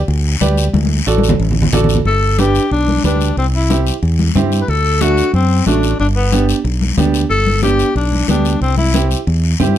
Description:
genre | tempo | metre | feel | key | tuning
latin, cumbia | 183 BPM | 4/4 | straight | G major | A4 = 439 Hz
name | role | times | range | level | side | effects
fingered electric bass | bass | 0.1-9.8 s | G1 to G2 | -15 LUFS | equal | none
congas | percussion | 0.1-9.8 s | none | -19 LUFS | left 2 dB | none
guiro | percussion | 0.1-9.8 s | none | -26 LUFS | left 7 dB | none
clear upright piano | accompaniment | 0.4-9.8 s | A3 to D5 | -18 LUFS | right 5 dB | none
breathy tenor saxophone | melody | 2.1-9.1 s | B3 to B4 | -17 LUFS | left 3 dB | none
room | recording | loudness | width
light reverb | none | -12 LUFS | side -11 dB against mid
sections
0.0-2.1 A section; 2.1-9.8 B section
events
drum fill 0.7-2.1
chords
0.0 G; 0.7 D; 2.1 G; 3.4 C; 4.7 D7; 6.0 G; 8.6 C

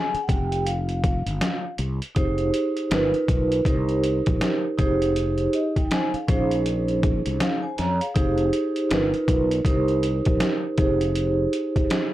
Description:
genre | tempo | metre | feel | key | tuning
hip hop, jazz-hop | 80 BPM | 4/4 | swing 60% on 16ths | F minor | A4 = 444 Hz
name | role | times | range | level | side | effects
vibraphone with soft mallets | accompaniment | 0.0-12.1 s | Db4 to Bb5 | -23 LUFS | right 1 dB | none
fretless electric bass | bass | 0.1-11.5 s | F1 to F2 | -26 LUFS | equal | tube saturation, analog chorus
trip hop sampler-style drum kit | drums | 0.1-12.1 s | hi-hat, kick drum, snare drum | -24 LUFS | equal | overdrive
room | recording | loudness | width
light reverb | dry, gritty hardware recording, transformer saturation | -20 LUFS | side -14 dB against mid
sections
0.0-2.2 A section; 2.2-12.1 A section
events
vibraphone solo 0.0-2.2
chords
0.3 Fsus2; 2.2 Fm9; 2.9 G7alt; 3.7 Cm7; 4.8 Fm9; 6.3 Bbm11; 8.2 Fm9; 8.9 G7alt; 9.7 Cm7; 10.8 Fm9

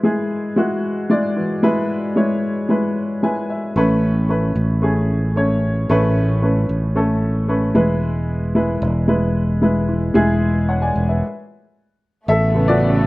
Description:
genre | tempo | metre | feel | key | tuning
piano-driven pop | 113 BPM | 4/4 | straight | A major | A4 = 440 Hz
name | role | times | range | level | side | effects
warm upright piano | accompaniment | 0.0-13.1 s | A2 to G#5 | -18 LUFS | equal | slapback echo
fingered electric bass | bass | 3.8-13.1 s | E1 to A1 | -18 LUFS | equal | none
muted symphonic string section | sustained chords | 12.3-13.1 s | C#3 to B3 | -22 LUFS | right 1 dB | none
room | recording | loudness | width
little or no reverb | recorded outdoors, with no room sound | -16 LUFS | side -20 dB against mid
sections
0.0-12.3 A section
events
upright piano fill 3.0-3.8; stop 11.2-12.3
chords
0.0 E; 3.8 Aadd9; 7.8 E; 12.3 Aadd9

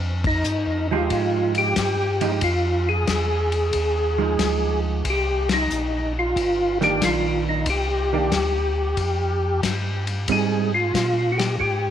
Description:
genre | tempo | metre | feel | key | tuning
soul jazz organ trio | 92 BPM | 4/4 | swing 68% on 8ths | C minor | A4 = 443 Hz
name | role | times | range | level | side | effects
tonewheel organ | bass | 0.0-11.9 s | G1 to Bb2 | -25 LUFS | equal | overdrive, slow rotary speaker
warm soul drum kit | drums | 0.2-11.8 s | hi-hat, kick drum, ride cymbal, snare drum | -28 LUFS | left 5 dB | none
percussive tonewheel organ | melody | 0.3-11.9 s | Eb4 to Ab4 | -23 LUFS | left 1 dB | slow rotary speaker, chorus vibrato, tape echo
hollow-body jazz guitar | accompaniment | 0.9-10.7 s | Eb3 to G4 | -26 LUFS | right 10 dB | none
room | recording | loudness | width
light reverb, studio reverb | 1960s-style stereo | -19 LUFS | side -10 dB against mid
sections
0.0-11.9 A section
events
band accent 0.1-0.5, 5.4-5.7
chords
0.0 Fm9; 5.0 Cm9; 10.3 Abmaj7

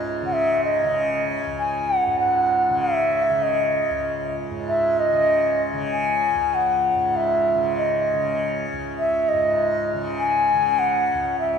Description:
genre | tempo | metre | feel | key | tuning
indian classical | 97 BPM | 7/4 | straight | C# raga darbari | A4 = 440 Hz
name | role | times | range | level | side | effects
tanpura | drone | 0.0-11.6 s | C#2 to C#3 | -27 LUFS | right 1 dB | none
mellow bansuri | melody | 0.3-11.6 s | D#5 to G#5 | -20 LUFS | equal | none
room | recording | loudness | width
wet church reverb, RT60 3.0 s | recorded in a church or concert hall | -19 LUFS | side -6 dB against mid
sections
0.0-11.6 A section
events
speeding up 0.0-11.6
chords
none

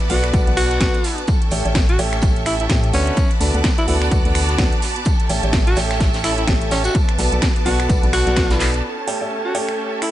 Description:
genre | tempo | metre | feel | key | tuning
piano house | 127 BPM | 4/4 | swing 58% on 16ths | A mixolydian | A4 = 441 Hz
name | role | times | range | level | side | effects
string machine, violins | sustained chords | 0.0-10.1 s | A4 to F#6 | -29 LUFS | equal | ensemble chorus, sidechain pumping
house drum kit | drums | 0.0-10.1 s | finger snaps, handclaps, hi-hat, snare drum | -25 LUFS | right 1 dB | studio ambience
vintage brush drum kit | drums | 0.0-8.8 s | hi-hat, snare drum, tambourine | -31 LUFS | right 1 dB | high-pass filter on hats, studio ambience, high-pass filter on snare, high-pass filter on perc, high-pass filter on room
rich symphonic string section | texture | 0.0-10.1 s | B3 to A5 | -26 LUFS | right 3 dB | sidechain pumping
raspy alto saxophone | melody | 0.1-10.1 s | C#4 to F#4 | -24 LUFS | equal | digital delay
warm upright piano | riff | 0.1-10.1 s | D3 to B5 | -25 LUFS | equal | sidechain pumping, digital delay
organ-like FM bass | bass | 0.1-8.8 s | A1 to A2 | -21 LUFS | equal | sidechain pumping
electronic kick drum | drums | 0.3-8.5 s | none | -19 LUFS | equal | overdrive, studio ambience
room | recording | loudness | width
small room ambience | nothing above 10.7 kHz | -15 LUFS | side -13 dB against mid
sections
0.0-8.8 A section; 8.8-10.1 B section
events
drum fill 8.6; filter sweep on string machine 8.8-10.1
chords
0.0 Bm7; 1.3 A7; 2.9 D6; 5.1 A7; 7.0 Bm7; 8.8 A7

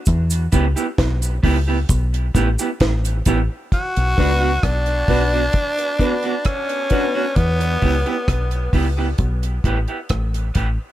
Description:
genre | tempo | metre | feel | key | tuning
dub reggae | 66 BPM | 4/4 | straight | B minor | A4 = 440 Hz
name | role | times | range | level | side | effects
deep dub fingered electric bass | bass | 0.1-10.8 s | A1 to E2 | -19 LUFS | equal | none
deep reggae drum kit | drums | 0.1-10.8 s | hi-hat, kick drum, rim click, snare drum | -20 LUFS | equal | none
cabasa | percussion | 0.1-3.5 s | none | -29 LUFS | right 3 dB | none
electric guitar at the edge of break-up | accompaniment | 0.5-10.7 s | B3 to G4 | -25 LUFS | right 4 dB | high-pass filter, dub echo
raspy tenor saxophone | melody | 3.7-8.9 s | B3 to F#4 | -22 LUFS | equal | dub echo
dark upright piano | stabs | 4.2-7.1 s | B3 to B4 | -28 LUFS | left 3 dB | dub echo
room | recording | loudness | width
light reverb, small room ambience | none | -17 LUFS | side -14 dB against mid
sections
0.0-3.7 A section; 3.7-10.9 B section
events
break 0.0-3.7; filter sweep on clean electric guitar 7.4-10.9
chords
0.1 Em; 3.7 Bm; 7.4 Em

